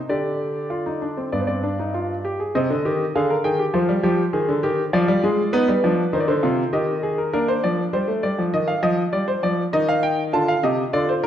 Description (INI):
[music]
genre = classical, baroque-style 3-part fugue for grand piano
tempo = 100 BPM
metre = 4/4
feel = straight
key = C minor, Bb major from 7.3 s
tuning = A4 = 441 Hz
[part]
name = clear grand piano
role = solo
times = 0.0-11.3 s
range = G2 to A5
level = -19 LUFS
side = equal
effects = none
[sound]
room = wet recital hall reverb, RT60 1.7 s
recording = dark, warm production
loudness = -19 LUFS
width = side -10 dB against mid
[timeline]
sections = 0.0-2.5 A section; 2.5-7.3 B section; 7.3-11.3 C section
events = none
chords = 0.1 G5/D; 1.3 G5; 2.5 Cm; 3.7 Fm; 4.9 G7/F; 6.1 Cm; 7.3 Bb; 8.5 Eb; 9.7 F7(no3)/Eb